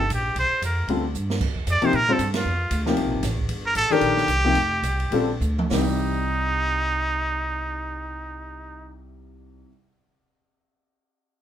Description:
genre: modal jazz.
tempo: 195-230 BPM.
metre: 4/4.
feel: swing 58% on 8ths.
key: C dorian.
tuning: A4 = 441 Hz.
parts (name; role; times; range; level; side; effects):
trumpet with straight mute; melody; 0.0-8.9 s; Eb4 to D5; -24 LUFS; right 1 dB; none.
upright bass; bass; 0.0-9.6 s; F1 to Bb2; -27 LUFS; right 1 dB; none.
open jazz drum kit; drums; 0.1-5.8 s; crash cymbal, hi-hat, kick drum, ride cymbal, snare drum, toms; -31 LUFS; right 2 dB; none.
warm baby grand piano; accompaniment; 0.9-9.7 s; C2 to C5; -24 LUFS; left 3 dB; none.
room: light reverb.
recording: minimal, uncompressed stereo recording.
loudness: -20 LUFS.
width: side -10 dB against mid.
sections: 0.0-5.7 A section; 5.7-8.2 B section.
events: drum fill 1.1, 5.4-5.7; band accent 2.3; slowing down 3.5-5.7.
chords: 0.0 C9sus4; 5.7 Cm.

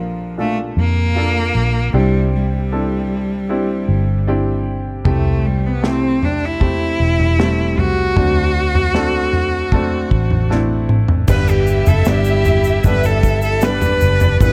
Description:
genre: pop ballad.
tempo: 77 BPM.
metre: 4/4.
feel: straight.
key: G major.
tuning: A4 = 441 Hz.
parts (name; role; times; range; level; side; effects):
clear cello; melody; 0.0-14.5 s; F3 to B4; -22 LUFS; equal; none.
clear concert grand piano; accompaniment; 0.0-14.5 s; G2 to D5; -24 LUFS; equal; none.
vintage muted fingered electric bass; bass; 0.0-14.5 s; E1 to F2; -20 LUFS; equal; none.
modern studio drum kit; drums; 5.1-14.5 s; crash cymbal, kick drum, snare drum, toms; -20 LUFS; equal; none.
rich studio violin section; second line; 11.3-14.5 s; D4 to F#5; -27 LUFS; equal; none.
tube shaker; percussion; 11.3-14.5 s; none; -39 LUFS; equal; none.
room: small room ambience.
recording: none.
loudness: -16 LUFS.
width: mono.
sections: 0.0-11.3 A section; 11.3-14.5 B section.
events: drum fill 10.5-11.3.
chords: 0.0 Bbmaj7; 1.9 Cadd9; 5.1 Am7/C; 8.2 D7; 11.3 G.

